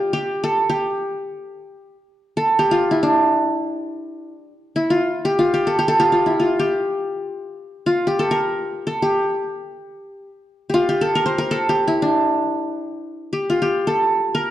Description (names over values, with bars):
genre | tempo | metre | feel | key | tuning
Turkish makam ensemble | free time | none | none | unclear | A4 = 445 Hz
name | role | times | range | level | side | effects
qanun | solo | 0.0-14.5 s | D4 to C5 | -18 LUFS | equal | none
room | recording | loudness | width
moderate recital hall reverb, RT60 1.7 s | dark, warm production | -17 LUFS | side -13 dB against mid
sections
0.0-13.0 A section; 13.0-14.5 A section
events
none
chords
none